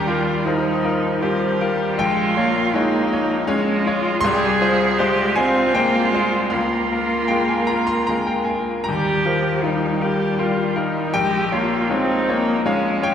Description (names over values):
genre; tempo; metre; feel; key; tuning
neoclassical piano and strings; 79 BPM; 3/4; rubato; unclear; A4 = 442 Hz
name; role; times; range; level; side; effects
rich cello; second line; 0.0-13.1 s; Db4 to Ab4; -23 LUFS; right 3 dB; none
bright grand piano; accompaniment; 0.0-13.1 s; Bb1 to C6; -20 LUFS; left 3 dB; none
rich viola; accompaniment; 0.0-13.1 s; F3 to C4; -23 LUFS; equal; none
room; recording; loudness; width
wet concert hall reverb, RT60 2.3 s; recorded in a church or concert hall; -17 LUFS; side -8 dB against mid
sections
0.0-13.1 A section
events
none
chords
0.0 Ebadd9; 2.0 Bbm7; 4.2 Fm/C; 6.5 Db6; 8.9 Ebadd9; 11.2 Bbm7